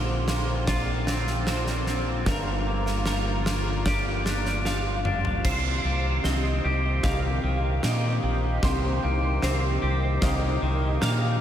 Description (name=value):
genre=post-rock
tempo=75 BPM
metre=4/4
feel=straight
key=C minor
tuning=A4 = 441 Hz
part: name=sweeping resonant pad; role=sustained chords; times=0.0-11.4 s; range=D3 to G4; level=-33 LUFS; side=equal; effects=chorus
part: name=twangy electric guitar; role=arpeggios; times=0.0-11.4 s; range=G2 to G4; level=-31 LUFS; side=left 1 dB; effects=spring reverb, diffuse ambient delay
part: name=twelve-string electric guitar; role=arpeggios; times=0.0-11.4 s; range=Bb4 to F5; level=-33 LUFS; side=right 1 dB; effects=ensemble chorus, diffuse ambient delay
part: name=growling fingered electric bass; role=bass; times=0.0-11.4 s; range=G1 to Bb2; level=-26 LUFS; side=equal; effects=overdrive
part: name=huge arena drum kit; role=drums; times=0.3-11.2 s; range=crash cymbal, kick drum, snare drum, toms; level=-29 LUFS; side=equal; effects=none
room=moderate huge ambient reverb, RT60 8.3 s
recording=dreamy mix soaked in reverb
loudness=-23 LUFS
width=side -10 dB against mid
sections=0.0-5.5 A section; 5.5-11.4 B section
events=drum fill 4.7-5.5, 5.5-11.4; build-up 5.5-11.4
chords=0.0 Bbadd9; 2.3 Gm7; 5.5 Cm7